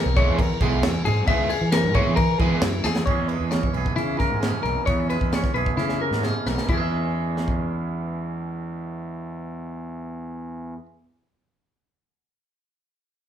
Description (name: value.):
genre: math rock and midwest emo.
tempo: 133 BPM.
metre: 4/4.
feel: straight.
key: E lydian.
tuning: A4 = 444 Hz.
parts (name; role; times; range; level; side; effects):
clean electric guitar; arpeggios; 0.0-10.9 s; E4 to E5; -27 LUFS; left 5 dB; none.
fuzz fingered electric bass; bass; 0.1-10.7 s; B1 to E3; -26 LUFS; equal; overdrive.
overdriven electric guitar; riff; 0.2-2.9 s; G#3 to G#4; -27 LUFS; right 4 dB; none.
crisp fusion drum kit; drums; 0.2-7.6 s; crash cymbal, kick drum, ride cymbal, snare drum; -25 LUFS; equal; none.
twangy electric guitar; accompaniment; 3.1-10.9 s; E2 to A#4; -30 LUFS; right 8 dB; none.
room: moderate large studio reverb, RT60 0.9 s.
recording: band playing live in one room.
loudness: -20 LUFS.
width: side -9 dB against mid.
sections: 0.0-3.1 A section; 3.1-6.7 B section; 6.7-10.3 C section.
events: drum fill 2.9, 5.8-6.7.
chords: 0.0 E6.